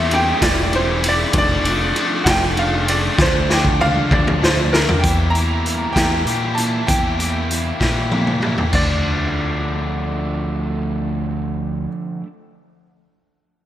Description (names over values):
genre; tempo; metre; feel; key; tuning
indie rock; 65 BPM (dotted quarters); 6/8; straight; D minor; A4 = 440 Hz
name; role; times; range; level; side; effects
bright upright piano; melody; 0.0-11.9 s; Bb4 to Bb5; -22 LUFS; right 1 dB; none
overdriven electric guitar; riff; 0.0-12.3 s; F3 to E4; -26 LUFS; right 6 dB; analog chorus, digital delay
overdriven semi-hollow guitar; riff; 0.0-12.3 s; D3 to A4; -24 LUFS; left 6 dB; spring reverb
growling fingered electric bass; bass; 0.0-11.9 s; E1 to Bb2; -22 LUFS; equal; overdrive
raw garage drum kit; drums; 0.1-8.9 s; crash cymbal, hi-hat, kick drum, ride cymbal, snare drum, toms; -19 LUFS; equal; gated reverb
room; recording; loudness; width
moderate lush hall reverb, RT60 2.3 s; bright 1980s-style digital production; -16 LUFS; side -12 dB against mid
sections
0.0-5.0 A section; 5.0-8.7 B section; 8.7-12.4 C section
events
upright piano solo 0.0-5.0; drum fill 3.2-5.0, 7.8-8.7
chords
0.0 Edim; 1.3 Dm/F; 3.2 Dm; 5.0 Edim; 8.7 Dm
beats
0.42 | 1.34 2.27 | 3.19 4.11 | 5.04 5.96 | 6.89 7.81 | 8.74 9.66 | 10.59 11.52